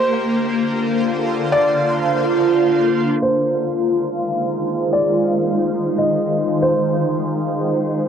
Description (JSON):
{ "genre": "hip hop", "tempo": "free time", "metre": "none", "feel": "none", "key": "F dorian", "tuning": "A4 = 436 Hz", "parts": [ { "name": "felt-muted upright piano", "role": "melody", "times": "0.0-7.0 s", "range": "C5 to Eb5", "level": "-21 LUFS", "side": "equal", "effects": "tape echo" }, { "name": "shimmering ambient pad", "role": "sustained chords", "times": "0.0-8.1 s", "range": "D3 to C5", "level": "-17 LUFS", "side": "equal", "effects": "chorus, built-in reverb, phaser, cassette tape" } ], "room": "moderate spring reverb, RT60 2.2 s", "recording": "home recording on cassette, low-pass filter", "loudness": "-16 LUFS", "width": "side -8 dB against mid", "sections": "0.0-3.2 A section; 3.2-8.1 B section", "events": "none", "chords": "0.0 Bbadd9; 3.2 Fm7", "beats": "free time" }